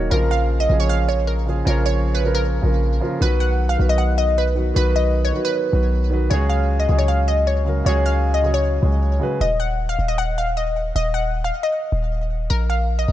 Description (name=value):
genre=hip hop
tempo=155 BPM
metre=4/4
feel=half-time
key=Eb minor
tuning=A4 = 442 Hz
part: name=glassy wavetable pluck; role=melody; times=0.0-13.1 s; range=Bb4 to F#5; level=-22 LUFS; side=equal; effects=chorus, low-pass filter, digital delay
part: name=dark concert grand piano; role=accompaniment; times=0.0-9.4 s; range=Db3 to Db5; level=-24 LUFS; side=right 1 dB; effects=low-pass filter
part: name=warm 808-style bass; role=bass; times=0.0-13.1 s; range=Eb1 to Db2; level=-19 LUFS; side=equal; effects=none
room=small room ambience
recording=none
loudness=-17 LUFS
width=side -13 dB against mid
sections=0.0-9.4 A section; 9.4-13.1 B section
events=none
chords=0.1 Bbm; 3.2 B; 6.3 Dbsus4; 9.4 Ebm; 12.5 Bbsus4